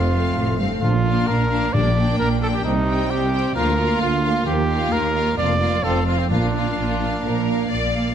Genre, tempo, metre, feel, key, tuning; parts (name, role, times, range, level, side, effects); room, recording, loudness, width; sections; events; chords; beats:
cinematic, heroic adventure film score; 131 BPM; 4/4; straight; Bb major; A4 = 441 Hz
warm symphonic violin section; melody; 0.0-8.1 s; F5 to G5; -31 LUFS; left 4 dB
warm symphonic violin section; second line; 0.0-8.1 s; C4 to D5; -28 LUFS; left 1 dB
warm symphonic viola section; accompaniment; 0.0-8.1 s; G3 to C4; -27 LUFS; equal
mellow French horn section; sustained chords; 0.0-7.4 s; F3 to D4; -32 LUFS; left 4 dB
clear trumpet; stabs; 0.0-7.7 s; C4 to D5; -24 LUFS; right 1 dB
rich symphonic cello section; bass; 0.0-8.1 s; D2 to C3; -24 LUFS; right 2 dB
rich symphonic double bass section; bass; 0.0-8.1 s; F1 to Eb2; -25 LUFS; right 3 dB
timpani; percussion; 0.8-2.4, 6.3-7.0 s; Bb2; -26 LUFS; left 4 dB
moderate scoring stage reverb, RT60 1.9 s; -18 LUFS; side -9 dB against mid
0.0-8.1 A section
0.0 F; 0.8 Bb; 1.7 Gm/Bb; 2.7 Cm; 3.6 Bb/D; 4.5 Ebadd9; 5.4 Bb/F; 5.8 F; 6.3 Bb
0.36 | 0.82 1.28 1.74 2.20 | 2.65 3.11 3.56 4.01 | 4.47 4.92 5.38 5.84 | 6.30 6.77 7.24 7.71